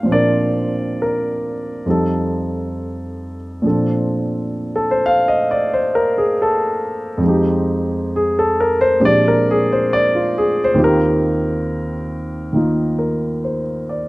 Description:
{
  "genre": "jazz ballad",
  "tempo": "67 BPM",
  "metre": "4/4",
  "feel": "swing 68% on 8ths",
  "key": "Bb major",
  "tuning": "A4 = 439 Hz",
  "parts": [
    { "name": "warm grand piano", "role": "solo", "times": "0.0-14.1 s", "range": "Eb2 to G5", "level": "-16 LUFS", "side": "equal", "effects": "none" }
  ],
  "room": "little or no reverb",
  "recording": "recorded outdoors, with no room sound",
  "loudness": "-15 LUFS",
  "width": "side -20 dB against mid",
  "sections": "0.0-3.6 A section; 3.6-14.1 B section",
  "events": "none",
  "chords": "0.0 Bbmaj9; 1.9 F7; 3.6 Bbmaj9; 7.2 Fm7; 9.0 Bb13; 10.8 Eb69"
}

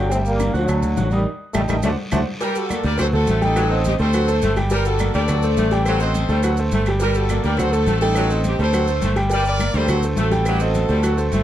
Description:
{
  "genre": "latin, salsa",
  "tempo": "209 BPM",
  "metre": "4/4",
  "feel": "straight",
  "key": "G harmonic minor",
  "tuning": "A4 = 440 Hz",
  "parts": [
    { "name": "clear trombone section", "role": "melody", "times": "0.0-2.2 s", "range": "D3 to C4", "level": "-23 LUFS", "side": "equal", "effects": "none" },
    { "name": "bright grand piano", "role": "accompaniment", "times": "0.0-11.4 s", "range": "F#3 to F#6", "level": "-24 LUFS", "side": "right 1 dB", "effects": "none" },
    { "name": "fingered electric bass", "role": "bass", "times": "0.0-11.4 s", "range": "G1 to D2", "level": "-20 LUFS", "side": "equal", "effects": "none" },
    { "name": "bongos and cowbell", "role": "percussion", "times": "0.1-11.4 s", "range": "none", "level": "-32 LUFS", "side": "left 5 dB", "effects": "none" },
    { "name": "congas", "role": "percussion", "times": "0.1-11.4 s", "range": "none", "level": "-28 LUFS", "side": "left 1 dB", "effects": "none" },
    { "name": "guiro", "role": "percussion", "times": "0.1-11.4 s", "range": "none", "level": "-38 LUFS", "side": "left 1 dB", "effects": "none" },
    { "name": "maracas", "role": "percussion", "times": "0.1-11.4 s", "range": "none", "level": "-39 LUFS", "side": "right 7 dB", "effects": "none" },
    { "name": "claves", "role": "percussion", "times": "0.4-11.2 s", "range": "none", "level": "-34 LUFS", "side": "right 3 dB", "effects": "none" },
    { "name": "clear horn section", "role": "melody", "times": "2.4-11.4 s", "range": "Eb4 to D5", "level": "-23 LUFS", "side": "equal", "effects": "none" },
    { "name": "clear saxophone section", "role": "second line", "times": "2.4-11.4 s", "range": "F#3 to A3", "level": "-28 LUFS", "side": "right 1 dB", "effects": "none" }
  ],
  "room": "moderate studio reverb, RT60 0.7 s",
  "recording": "dark, warm production",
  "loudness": "-17 LUFS",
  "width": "side -12 dB against mid",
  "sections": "0.0-2.4 A section; 2.4-11.4 B section",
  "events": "band accent 1.3-2.4",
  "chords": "0.1 Gm; 0.7 D; 1.3 Gsus2/A; 1.8 D7; 2.4 Gmadd9; 3.0 Am7b5; 4.1 D7; 4.7 Gmadd9; 5.3 D7; 5.9 Am7b5; 6.4 D7; 7.0 Gmadd9; 7.6 Am7b5; 8.7 D7; 9.3 Gmadd9; 9.9 D7; 10.5 Am7b5"
}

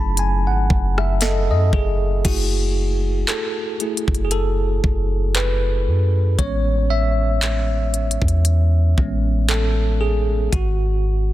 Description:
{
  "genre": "contemporary R&B",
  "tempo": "58 BPM",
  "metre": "4/4",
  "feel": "swing 54% on 16ths",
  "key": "F# dorian",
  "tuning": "A4 = 440 Hz",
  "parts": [
    { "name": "bell-like tine electric piano", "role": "accompaniment", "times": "0.0-11.3 s", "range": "F#3 to B5", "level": "-23 LUFS", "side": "equal", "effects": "fast stereo tremolo" },
    { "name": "soft 808-style bass", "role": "bass", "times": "0.0-11.3 s", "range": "F#1 to F#2", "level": "-19 LUFS", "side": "equal", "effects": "none" },
    { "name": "trap drum kit", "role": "drums", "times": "0.2-10.8 s", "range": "crash cymbal, handclaps, hi-hat, kick drum, rim click, snare drum", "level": "-23 LUFS", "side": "equal", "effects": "none" }
  ],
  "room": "little or no reverb",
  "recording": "dense, heavily limited modern master",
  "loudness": "-17 LUFS",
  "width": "side -14 dB against mid",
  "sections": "0.0-2.2 A section; 2.2-11.3 B section",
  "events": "tine electric piano fill 0.0-2.2; tine electric piano solo 2.2-11.3",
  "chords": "0.0 F#m9; 2.2 F#m7; 6.4 Amaj7; 10.5 G#7(no3)"
}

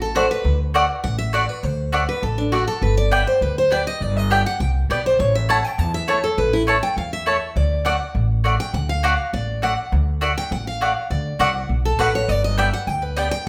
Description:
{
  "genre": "bluegrass",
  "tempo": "203 BPM",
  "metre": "4/4",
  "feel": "straight",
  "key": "D mixolydian",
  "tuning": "A4 = 440 Hz",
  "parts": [
    { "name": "picked steel-string acoustic guitar", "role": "accompaniment", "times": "0.0-13.5 s", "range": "D4 to A5", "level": "-25 LUFS", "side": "equal", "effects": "none" },
    { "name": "upright bass", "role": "bass", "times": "0.0-13.3 s", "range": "G1 to E2", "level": "-24 LUFS", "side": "equal", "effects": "none" },
    { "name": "mandolin", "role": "stabs", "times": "0.2-13.3 s", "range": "A3 to A5", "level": "-24 LUFS", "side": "equal", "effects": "none" }
  ],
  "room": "moderate large studio reverb, RT60 1.1 s",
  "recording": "band playing live in one room",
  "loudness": "-20 LUFS",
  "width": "mono",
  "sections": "0.0-13.5 A section",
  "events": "steel-string acoustic guitar solo 0.0-13.5",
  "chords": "0.0 D; 2.8 G; 5.2 A; 7.6 D; 12.3 G"
}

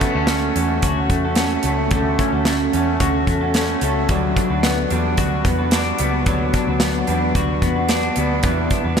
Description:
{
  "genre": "jangly indie pop",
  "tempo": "110 BPM",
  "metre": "4/4",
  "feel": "straight",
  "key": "D major",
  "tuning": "A4 = 441 Hz",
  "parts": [
    { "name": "electric guitar through a small old amp", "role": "accompaniment", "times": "0.0-9.0 s", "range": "D3 to B4", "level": "-23 LUFS", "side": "right 4 dB", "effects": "wide subtle chorus" },
    { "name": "clean electric guitar", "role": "arpeggios", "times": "0.0-9.0 s", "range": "F#3 to F#4", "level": "-22 LUFS", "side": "left 4 dB", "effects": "lush chorus" },
    { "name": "modern studio drum kit", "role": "drums", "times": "0.0-9.0 s", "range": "hi-hat, kick drum, snare drum", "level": "-22 LUFS", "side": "right 1 dB", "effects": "none" },
    { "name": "vintage muted picked electric bass", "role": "bass", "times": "0.2-9.0 s", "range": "C#2 to E2", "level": "-23 LUFS", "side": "equal", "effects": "none" }
  ],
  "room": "wet huge ambient reverb, RT60 7.8 s",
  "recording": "dreamy mix soaked in reverb",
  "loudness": "-16 LUFS",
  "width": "side -7 dB against mid",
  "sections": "0.0-9.0 A section",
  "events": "none",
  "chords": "0.0 Dmaj7; 4.1 Gmaj7; 8.4 Em7"
}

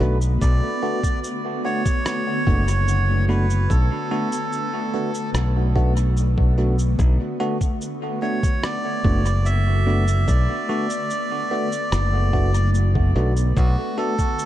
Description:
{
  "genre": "ambient dub",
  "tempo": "73 BPM",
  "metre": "4/4",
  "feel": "straight",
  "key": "B minor",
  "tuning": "A4 = 440 Hz",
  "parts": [
    { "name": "granular cloud pad", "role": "sustained chords", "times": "0.0-14.5 s", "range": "D3 to B4", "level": "-29 LUFS", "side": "left 1 dB", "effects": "built-in reverb" },
    { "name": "bell-like tine electric piano", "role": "stabs", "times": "0.0-14.1 s", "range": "A3 to F#4", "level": "-27 LUFS", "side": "right 1 dB", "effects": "phaser, dub echo" },
    { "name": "modern bright fingered electric bass", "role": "bass", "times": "0.0-13.8 s", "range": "F#1 to B1", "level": "-18 LUFS", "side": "equal", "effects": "none" },
    { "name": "electronic shaker and rim click", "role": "drums", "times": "0.2-14.5 s", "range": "none", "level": "-33 LUFS", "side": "equal", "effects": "dub echo" },
    { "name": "melodica", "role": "melody", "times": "0.4-14.5 s", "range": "F#4 to E5", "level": "-27 LUFS", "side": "right 2 dB", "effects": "dub echo" },
    { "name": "electronic kick drum", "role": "drums", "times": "0.4-14.3 s", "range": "none", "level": "-21 LUFS", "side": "equal", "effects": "none" }
  ],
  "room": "light reverb",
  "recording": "dark, warm production",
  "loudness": "-18 LUFS",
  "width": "side -13 dB against mid",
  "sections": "0.0-14.5 A section",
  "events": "none",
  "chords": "0.0 Bm7"
}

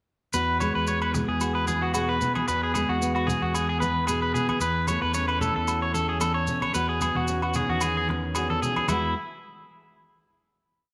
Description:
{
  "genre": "highlife guitar band",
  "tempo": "112 BPM",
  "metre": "4/4",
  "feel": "swing 54% on 16ths",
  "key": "E major",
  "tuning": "A4 = 440 Hz",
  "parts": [
    { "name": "fingerpicked steel-string acoustic guitar", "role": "accompaniment", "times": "0.3-9.1 s", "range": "E2 to A4", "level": "-33 LUFS", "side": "equal", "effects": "none" },
    { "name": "electric guitar at the edge of break-up", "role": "arpeggios", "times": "0.3-9.1 s", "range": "E4 to C#5", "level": "-28 LUFS", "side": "equal", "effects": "spring reverb, slapback echo" },
    { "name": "fingered electric bass", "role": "bass", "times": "0.3-9.1 s", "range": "E2", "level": "-33 LUFS", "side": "equal", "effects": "none" },
    { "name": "maracas", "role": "percussion", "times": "0.3-9.1 s", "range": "none", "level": "-38 LUFS", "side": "equal", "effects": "none" },
    { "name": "agogo bells", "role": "percussion", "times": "0.6-9.0 s", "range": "none", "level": "-38 LUFS", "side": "equal", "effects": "none" },
    { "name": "congas", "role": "percussion", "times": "0.6-9.1 s", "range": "none", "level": "-37 LUFS", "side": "equal", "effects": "none" }
  ],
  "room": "moderate echo chamber reverb, RT60 2.0 s",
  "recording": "none",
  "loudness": "-26 LUFS",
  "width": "mono",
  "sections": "0.3-8.9 groove; 8.9-10.9 final chord",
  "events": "none",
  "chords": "0.3 Eadd9; 4.6 A6/E; 6.7 Badd9/E; 8.9 N.C."
}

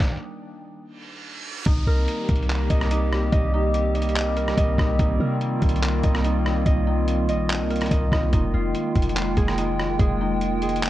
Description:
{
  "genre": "hip hop, atmospheric cloud-rap",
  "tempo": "144 BPM",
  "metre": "4/4",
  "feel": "half-time",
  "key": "C minor",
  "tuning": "A4 = 438 Hz",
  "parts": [
    { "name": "Celtic harp", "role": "arpeggios", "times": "0.0-10.9 s", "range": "D4 to Eb6", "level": "-29 LUFS", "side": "right 1 dB", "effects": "tape echo" },
    { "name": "trip hop sampler-style drum kit", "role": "drums", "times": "0.0-10.9 s", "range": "handclaps, hi-hat, kick drum, rim click, snare drum", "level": "-24 LUFS", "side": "equal", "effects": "none" },
    { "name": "reverse cymbal and downlifter", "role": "sound effects", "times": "1.0-5.0 s", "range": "none", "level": "-38 LUFS", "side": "right 3 dB", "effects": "none" },
    { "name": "warbly tape-like pad", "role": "sustained chords", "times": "1.7-10.9 s", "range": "Eb3 to G5", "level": "-26 LUFS", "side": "equal", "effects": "chorus, built-in reverb" },
    { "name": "clean 808-style bass", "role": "bass", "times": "1.7-10.9 s", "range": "F1 to C3", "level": "-23 LUFS", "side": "equal", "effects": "none" }
  ],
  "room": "little or no reverb",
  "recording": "worn, warbling old tape, cassette tape, warbly pitch drift",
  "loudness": "-20 LUFS",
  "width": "side -14 dB against mid",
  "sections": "0.0-1.7 A section; 1.7-10.9 B section",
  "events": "stop 0.0-1.7; reverse cymbal 1.0-1.7",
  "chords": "0.0 Ebmaj7(no3); 1.7 Cm7; 8.3 Fm11"
}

